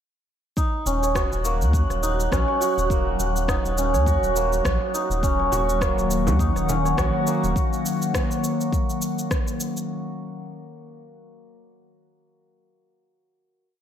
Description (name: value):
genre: organic downtempo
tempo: 103 BPM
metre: 4/4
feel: swing 56% on 16ths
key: Eb minor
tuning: A4 = 440 Hz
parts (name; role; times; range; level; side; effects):
- santur; arpeggios; 0.6-11.6 s; Bb3 to Db5; -25 LUFS; right 1 dB; diffuse ambient delay
- electronic kick drum; drums; 0.6-9.4 s; none; -25 LUFS; equal; small room reverb
- electronic shaker and rim click; drums; 0.6-9.9 s; none; -31 LUFS; equal; small room reverb
- wind-like tuned noise texture; texture; 1.3-7.6 s; Gb3 to Gb5; -33 LUFS; right 2 dB; built-in reverb, lush chorus
- warm sub bass; bass; 0.9-7.5 s; Eb1 to Eb2; -24 LUFS; equal; sidechain pumping
- warbly tape-like pad; sustained chords; 5.5-9.8 s; Eb3 to Gb5; -26 LUFS; left 2 dB; chorus, built-in reverb, sidechain pumping
- frame drum; percussion; 5.5-6.8 s; none; -31 LUFS; right 2 dB; none
room: moderate plate reverb, RT60 1.5 s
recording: dreamy mix soaked in reverb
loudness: -20 LUFS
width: side -9 dB against mid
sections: 0.6-9.9 groove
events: none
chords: 0.6 Ebm